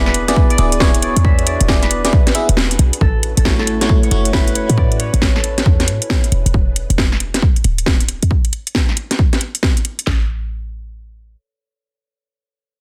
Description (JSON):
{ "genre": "UK garage, two-step garage", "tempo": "136 BPM", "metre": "4/4", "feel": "swing 64% on 16ths", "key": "A major", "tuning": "A4 = 439 Hz", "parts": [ { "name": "Celtic harp", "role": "melody", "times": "0.0-7.6 s", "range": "A4 to E5", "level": "-27 LUFS", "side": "equal", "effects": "digital delay" }, { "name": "soft string machine", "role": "sustained chords", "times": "0.0-6.5 s", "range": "C#4 to B4", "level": "-34 LUFS", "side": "equal", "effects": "none" }, { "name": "FM electric piano", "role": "stabs", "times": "0.0-5.0 s", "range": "A3 to E5", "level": "-22 LUFS", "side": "equal", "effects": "chorus, phaser, digital delay" }, { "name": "short 808-style bass", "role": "bass", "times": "0.0-11.4 s", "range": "D1 to A2", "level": "-20 LUFS", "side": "equal", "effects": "sidechain pumping" }, { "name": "house drum kit", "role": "drums", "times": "0.1-10.1 s", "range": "hi-hat, snare drum", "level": "-21 LUFS", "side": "equal", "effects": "small room ambience" }, { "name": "house drum kit", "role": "drums", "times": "0.4-10.2 s", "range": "handclaps, kick drum, snare drum", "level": "-17 LUFS", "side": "equal", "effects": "small room ambience" } ], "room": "light reverb, digital ambience", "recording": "dense, heavily limited modern master", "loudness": "-15 LUFS", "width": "mono", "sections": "0.0-3.0 A section; 3.0-10.1 B section; 10.1-12.8 C section", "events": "drop 0.0-3.0; kick drops out 2.6-3.0; band accent 2.6", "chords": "0.0 E7; 3.0 A6; 6.3 E7; 10.1 N.C." }